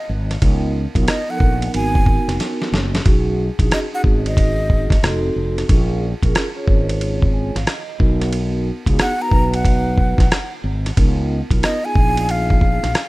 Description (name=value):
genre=hip hop, jazz-hop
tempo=91 BPM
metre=4/4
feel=swing 64% on 16ths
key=G# dorian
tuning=A4 = 440 Hz
part: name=breathy mellow silver concert flute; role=melody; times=0.0-13.1 s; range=D#5 to A#5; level=-24 LUFS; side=right 1 dB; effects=tape echo
part: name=fretless electric bass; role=bass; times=0.1-12.9 s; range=E#1 to C#2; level=-20 LUFS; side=equal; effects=analog chorus
part: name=dusty soul sampler-style drum kit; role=drums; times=0.3-13.1 s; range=hi-hat, kick drum, ride cymbal, rim click, snare drum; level=-17 LUFS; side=equal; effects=none
part: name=vibraphone with soft mallets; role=accompaniment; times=0.4-12.8 s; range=E#3 to G#5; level=-24 LUFS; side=right 1 dB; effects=none
room=digital ambience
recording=rough home demo mix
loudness=-15 LUFS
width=side -20 dB against mid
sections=0.0-3.1 A section; 3.1-13.1 A section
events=drum fill 2.4-3.1; vibraphone fill 7.0-8.3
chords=0.4 C#13; 1.7 G#m9; 3.1 B6; 5.0 F7b9; 5.7 A#m7; 8.0 G#m9/B; 11.0 C#13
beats=| 0.42 1.08 1.74 2.40 | 3.06 3.72 4.38 5.04 | 5.69 6.35 7.01 7.67 | 8.33 8.99 9.65 10.31 | 10.97 11.63 12.29 12.95